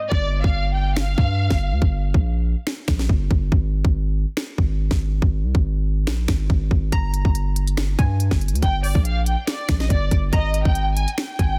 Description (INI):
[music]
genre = hip hop, trap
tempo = 141 BPM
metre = 4/4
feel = half-time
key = G phrygian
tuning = A4 = 438 Hz
[part]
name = hollow square pluck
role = second line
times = 0.0-0.1, 6.9-11.6 s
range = Eb5 to Bb5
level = -36 LUFS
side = equal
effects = chorus, tape echo
[part]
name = warm symphonic violin section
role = melody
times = 0.1-1.8, 8.6-11.6 s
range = D5 to Ab5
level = -29 LUFS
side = equal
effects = low-pass filter, tape echo
[part]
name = distorted 808-style bass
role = bass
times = 0.1-11.6 s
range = G1 to G2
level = -24 LUFS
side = equal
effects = distortion
[part]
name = trap drum kit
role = drums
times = 0.1-11.5 s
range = finger snaps, hi-hat, kick drum, snare drum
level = -22 LUFS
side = equal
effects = none
[sound]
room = little or no reverb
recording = dense, heavily limited modern master, low-pass filter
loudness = -21 LUFS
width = mono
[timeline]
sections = 0.1-11.6 A section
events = hi-hats muted 0.1-6.9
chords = 0.1 Gm; 3.5 N.C.; 6.9 Gm; 10.3 Absus2